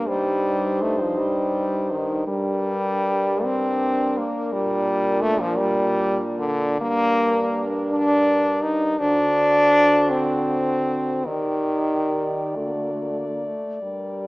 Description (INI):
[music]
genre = classical, lyrical piece for horn quartet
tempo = 44-57 BPM (dotted quarters)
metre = 6/8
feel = rubato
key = G minor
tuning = A4 = 439 Hz
[part]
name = warm French horn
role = melody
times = 0.0-14.3 s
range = Bb4 to D5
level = -29 LUFS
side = left 2 dB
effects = none
[part]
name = clear French horn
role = second line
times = 0.0-14.3 s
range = D4 to Bb4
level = -30 LUFS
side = right 2 dB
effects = none
[part]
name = warm French horn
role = accompaniment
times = 0.0-14.3 s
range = D3 to Eb4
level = -21 LUFS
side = equal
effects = none
[part]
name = mellow French horn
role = bass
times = 0.0-14.3 s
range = G2 to Eb3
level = -28 LUFS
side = right 1 dB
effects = none
[sound]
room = moderate scoring stage reverb, RT60 1.9 s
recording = small speaker sound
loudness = -19 LUFS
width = side -21 dB against mid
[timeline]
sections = 0.0-14.3 A section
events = none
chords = 0.1 Cm/G; 2.3 Gm; 4.5 Gm/Bb; 6.8 Gm; 9.0 D7; 11.3 Ebmaj7; 12.6 D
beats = | 0.07 1.18 | 2.27 3.44 | 4.53 5.59 | 6.79 7.90 | 8.99 10.10 | 11.26 12.56 | 13.82